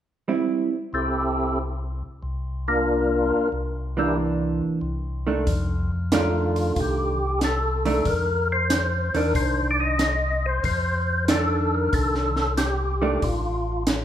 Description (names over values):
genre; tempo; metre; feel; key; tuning
soul jazz organ trio; 93 BPM; 4/4; swing 69% on 8ths; F mixolydian; A4 = 440 Hz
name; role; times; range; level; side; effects
vintage hollow-body jazz guitar; accompaniment; 0.3-13.2 s; Eb3 to E4; -26 LUFS; right 3 dB; none
percussive tonewheel organ; melody; 0.9-13.8 s; Bb3 to Eb5; -24 LUFS; left 1 dB; slow rotary speaker, chorus vibrato
tonewheel organ; bass; 0.9-14.0 s; A1 to F2; -27 LUFS; left 1 dB; overdrive
compact cocktail drum kit; drums; 5.5-14.0 s; hi-hat, kick drum, snare drum; -26 LUFS; equal; none
room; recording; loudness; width
wet recital hall reverb, RT60 1.4 s; recorded in a church or concert hall; -21 LUFS; side -10 dB against mid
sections
0.3-5.5 A section; 5.5-14.0 B section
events
none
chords
0.3 Am7; 1.6 C9sus4; 2.9 Gm7; 4.2 C9; 5.5 F13